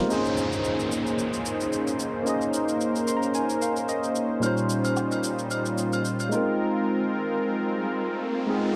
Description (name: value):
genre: amapiano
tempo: 111 BPM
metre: 4/4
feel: swing 55% on 16ths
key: Bb dorian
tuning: A4 = 440 Hz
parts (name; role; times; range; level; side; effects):
- barky tine electric piano; accompaniment; 0.0-8.8 s; Bb2 to C6; -29 LUFS; equal; analog chorus
- warm analog pad; sustained chords; 0.0-8.7 s; Bb2 to C5; -31 LUFS; equal; chorus, tremolo, sidechain pumping
- shaker; drums; 0.1-6.5 s; none; -37 LUFS; equal; none
- downlifter and riser; sound effects; 0.1-8.8 s; none; -38 LUFS; equal; none
- agogo bells and woodblock; percussion; 4.4-6.3 s; none; -37 LUFS; equal; none
room: light reverb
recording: dry, gritty hardware recording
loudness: -26 LUFS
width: mono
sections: 0.1-8.8 A section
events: tine electric piano fill 2.8-4.4; riser 7.0-8.8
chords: 0.1 Bbm11; 4.4 Eb13/Bb; 6.3 Ab69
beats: | 0.10 0.64 1.19 1.73 | 2.27 2.81 3.35 3.89 | 4.43 4.97 5.51 6.05 | 6.59 7.13 7.67 8.21 | 8.75